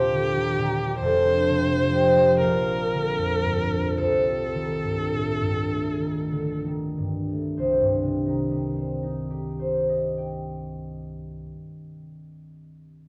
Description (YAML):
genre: classical, impressionist duo for viola and harp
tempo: 30-46 BPM (dotted quarters)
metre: 6/8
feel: rubato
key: C dorian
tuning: A4 = 440 Hz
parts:
  - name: warm viola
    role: melody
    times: 0.0-6.6 s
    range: G4 to C5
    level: -29 LUFS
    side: equal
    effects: none
  - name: concert harp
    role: accompaniment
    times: 0.0-12.4 s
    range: Eb1 to D6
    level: -26 LUFS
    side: equal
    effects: none
room: wet recital hall reverb, RT60 1.4 s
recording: dark, warm production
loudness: -24 LUFS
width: mono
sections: 0.0-7.6 A section; 7.6-11.0 B section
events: slowing down 0.0-7.6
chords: 0.0 Ebmaj7; 1.0 F69; 2.4 Bbadd9; 4.0 Cm6; 7.6 Cm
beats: | 0.99 2.40 | 3.99 5.71 | 7.57 9.27